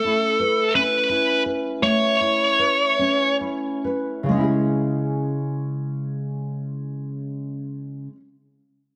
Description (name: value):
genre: pop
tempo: 43-59 BPM (dotted quarters)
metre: 6/8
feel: straight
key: C# minor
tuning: A4 = 440 Hz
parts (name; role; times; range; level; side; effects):
- fuzz lead guitar; melody; 0.0-3.4 s; A4 to C#5; -21 LUFS; equal; distortion
- nylon-string guitar; accompaniment; 0.0-8.2 s; C#3 to B4; -26 LUFS; equal; double-tracked
room: moderate lush hall reverb, RT60 1.9 s, small room ambience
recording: none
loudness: -22 LUFS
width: mono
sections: 0.0-4.3 A section; 4.3-9.0 B section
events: slowing down 0.0-4.3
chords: 0.0 Aadd9; 4.3 C#m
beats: 0.74 | 1.82 2.98 | 4.28 5.65 | 7.03